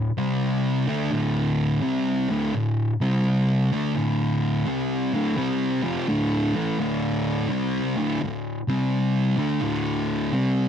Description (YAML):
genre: rock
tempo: 85 BPM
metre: 4/4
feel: swing 67% on 8ths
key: unclear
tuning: A4 = 440 Hz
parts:
  - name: thick fuzz guitar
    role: solo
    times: 0.0-10.7 s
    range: D2 to D4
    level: -21 LUFS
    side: equal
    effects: distortion
room: wet booth ambience, RT60 0.2 s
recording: dry, close 1970s-style studio recording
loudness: -22 LUFS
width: side -8 dB against mid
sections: 0.0-10.7 A section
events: none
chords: 0.1 C5; 0.8 D5; 2.9 C5; 3.6 D5; 8.6 C5; 9.3 D5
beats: 0.41 | 1.12 1.83 2.54 3.25 | 3.96 4.67 5.38 6.08 | 6.79 7.50 8.21 8.91 | 9.62 10.33